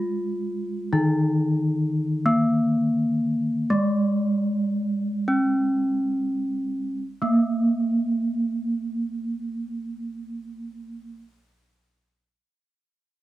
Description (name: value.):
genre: gamelan.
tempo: 33-49 BPM.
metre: 4/4.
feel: straight.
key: Bb slendro.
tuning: A4 = 440 Hz.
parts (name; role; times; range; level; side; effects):
gamelan-type bronze metallophone; melody; 0.0-11.1 s; Ab3-25c to F4; -24 LUFS; left 1 dB; none.
gamelan-type bronze metallophone; accompaniment; 0.0-11.1 s; Eb3 to Bb3; -26 LUFS; right 2 dB; none.
room: light reverb.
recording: faint mains hum.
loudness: -22 LUFS.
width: side -15 dB against mid.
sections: 0.0-7.0 A section; 7.0-13.2 B section.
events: slowing down 0.0-7.0.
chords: none.